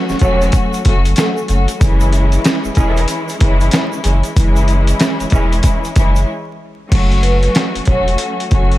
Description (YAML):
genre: hip hop, boom-bap hip-hop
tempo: 94 BPM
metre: 4/4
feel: swing 61% on 16ths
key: F# minor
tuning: A4 = 436 Hz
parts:
  - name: rich studio string section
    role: accompaniment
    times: 0.0-8.8 s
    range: E3 to F#4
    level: -19 LUFS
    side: left 2 dB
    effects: high-pass filter, low-pass filter
  - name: warm sub bass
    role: bass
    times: 0.1-8.8 s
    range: E1 to F#1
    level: -14 LUFS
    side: equal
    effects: none
  - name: dusty soul sampler-style drum kit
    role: drums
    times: 0.1-8.8 s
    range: crash cymbal, hi-hat, kick drum, snare drum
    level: -15 LUFS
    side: equal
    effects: overdrive
  - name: tube shaker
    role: percussion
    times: 0.1-6.3 s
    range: none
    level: -36 LUFS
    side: right 8 dB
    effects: none
  - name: vibraphone with soft mallets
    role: melody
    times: 0.2-1.5, 7.2-8.0 s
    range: A4 to C#5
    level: -22 LUFS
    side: right 1 dB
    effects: high-pass filter, low-pass filter, tape echo
  - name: clear horn section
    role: stabs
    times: 0.2-5.5 s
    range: C#3 to G#4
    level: -28 LUFS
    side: right 4 dB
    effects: high-pass filter, low-pass filter, tape echo
room: studio reverb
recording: vinyl crackle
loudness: -12 LUFS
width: side -16 dB against mid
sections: 0.0-6.9 A section; 6.9-8.8 B section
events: break 6.3-6.9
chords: 0.0 F#m; 1.8 C#m; 6.9 F#m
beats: 0.54 1.17 | 1.81 2.45 3.09 3.73 | 4.37 5.00 5.64 6.28 | 6.92 7.56 8.19